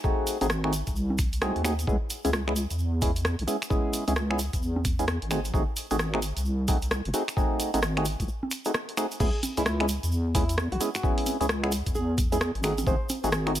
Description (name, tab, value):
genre	UK garage, two-step garage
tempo	131 BPM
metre	4/4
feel	swing 62% on 16ths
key	C# minor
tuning	A4 = 441 Hz
part	percussive organ stab	stabs	0.0-13.5 s	G#3 to G#4	-30 LUFS	equal	chorus, ping-pong delay
part	electronic kick drum	drums	0.0-13.0 s	none	-28 LUFS	equal	none
part	tube shaker	percussion	0.0-13.6 s	none	-38 LUFS	right 3 dB	none
part	punchy analog drum machine	drums	0.3-13.6 s	congas, crash cymbal, finger snaps, hi-hat, rim click	-31 LUFS	right 1 dB	none
part	deep soft wobble bass	bass	0.4-13.6 s	F#1 to E2	-28 LUFS	equal	chorus, tube saturation
part	flamenco guitar	melody	9.2-13.5 s	E4 to B#4	-34 LUFS	equal	digital delay
room	digital ambience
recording	none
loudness	-24 LUFS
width	side -12 dB against mid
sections	0.0-9.2 A section; 9.2-13.6 B section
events	break 8.3-9.2; drop 9.2-13.6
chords	0.0 G#7b9; 1.9 C#m7; 5.3 G#7b9; 9.2 C#m7; 12.6 G#7b9